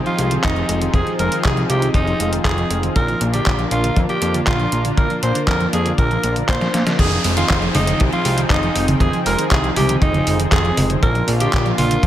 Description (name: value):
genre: italo disco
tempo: 119 BPM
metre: 4/4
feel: straight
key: F dorian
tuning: A4 = 440 Hz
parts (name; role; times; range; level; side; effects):
- lush unison pad; sustained chords; 0.0-12.1 s; F3 to G5; -23 LUFS; equal; chorus
- fat analog bass; bass; 0.0-12.1 s; F1 to Bb2; -21 LUFS; equal; tube saturation
- raspy alto saxophone; melody; 0.1-12.1 s; Eb4 to C5; -22 LUFS; equal; ping-pong delay
- soft round pluck; arpeggios; 0.1-12.1 s; D3 to Bb3; -26 LUFS; right 3 dB; wide subtle chorus, ping-pong delay
- detuned 8-bit digital drum machine; drums; 0.1-12.1 s; congas, crash cymbal, handclaps, hi-hat, snare drum; -22 LUFS; right 1 dB; gated reverb
- kick drum; drums; 0.4-12.1 s; none; -20 LUFS; equal; none
- downlifter; sound effects; 7.0-11.0 s; none; -29 LUFS; equal; none
room: light reverb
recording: none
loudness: -15 LUFS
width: side -12 dB against mid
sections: 0.0-7.0 A section; 7.0-12.1 B section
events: drum fill 6.6-7.0; band accent 6.9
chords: 0.0 Fm7; 3.0 Bb; 7.0 Fm7; 11.0 Bb